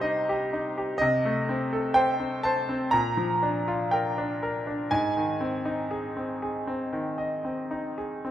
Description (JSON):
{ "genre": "classical, lyrical solo piano", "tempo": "61 BPM", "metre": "4/4", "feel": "rubato", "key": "Ab lydian", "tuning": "A4 = 439 Hz", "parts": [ { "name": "bright concert grand piano", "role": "solo", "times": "0.0-8.3 s", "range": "Ab2 to Bb5", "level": "-25 LUFS", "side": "equal", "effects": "none" } ], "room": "moderate recital hall reverb, RT60 1.4 s", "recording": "minimal, uncompressed stereo recording", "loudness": "-25 LUFS", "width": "side -11 dB against mid", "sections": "0.0-8.3 A section", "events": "none", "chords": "0.0 Cm; 1.0 Cm6; 2.9 Bb; 4.9 Ab" }